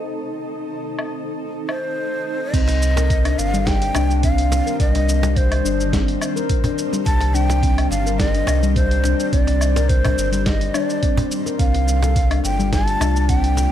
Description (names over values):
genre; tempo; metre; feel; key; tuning
organic downtempo; 106 BPM; 4/4; straight; C dorian; A4 = 440 Hz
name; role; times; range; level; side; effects
granular cloud pad; sustained chords; 0.0-13.7 s; Eb3 to F5; -28 LUFS; equal; built-in reverb, sidechain pumping
dusty soul sampler-style drum kit; drums; 1.0-13.7 s; crash cymbal, hi-hat, shaker, snare drum, woodblock; -28 LUFS; equal; low-pass filter on perc, low-pass filter on hats, low-pass filter on cymbals, low-pass filter on snare
breathy ney; melody; 1.7-13.7 s; C5 to A5; -24 LUFS; equal; ping-pong delay
handpan; arpeggios; 2.5-13.4 s; G3 to Bb4; -23 LUFS; left 4 dB; ping-pong delay
warm sub bass; bass; 2.5-13.7 s; G1 to C2; -19 LUFS; equal; none
electronic kick drum; drums; 2.5-13.4 s; none; -20 LUFS; equal; none
cajon; percussion; 2.7-13.7 s; none; -25 LUFS; right 2 dB; none
room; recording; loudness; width
light reverb; dark, warm production; -16 LUFS; side -11 dB against mid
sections
0.0-2.5 A section; 2.5-13.7 B section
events
none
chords
0.0 Cm; 11.6 Dm